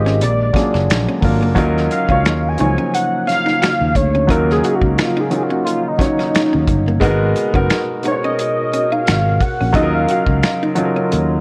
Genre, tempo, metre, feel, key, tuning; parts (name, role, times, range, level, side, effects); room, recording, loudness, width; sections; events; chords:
R&B, neo-soul; 88 BPM; 4/4; swing 54% on 16ths; Eb minor; A4 = 438 Hz
warm velvety synth lead; melody; 0.0-10.6 s; Eb4 to Ab5; -22 LUFS; equal; chorus
dark baby grand piano; accompaniment; 0.0-11.4 s; F3 to Db5; -22 LUFS; equal
warbly tape-like pad; sustained chords; 0.0-11.4 s; Cb3 to Bb4; -29 LUFS; equal; chorus, built-in reverb
sustaining fretless electric bass; bass; 0.0-11.4 s; Gb1 to Eb2; -20 LUFS; equal; subtle chorus
archtop guitar, miked and amplified; second line; 0.1-11.2 s; Bb3 to Gb4; -28 LUFS; equal
warm soul drum kit; drums; 0.1-11.3 s; finger snaps, hi-hat, kick drum, snare drum; -22 LUFS; equal
light reverb, small room ambience; worn, warbling old tape, cassette tape, warbly pitch drift; -16 LUFS; mono
0.0-1.6 A section; 1.6-11.4 B section
soft synth lead solo 1.6-11.4; kick muted 11.1
0.2 Bb7b13; 1.6 Ebm9; 7.0 Abm9; 9.7 Ebm9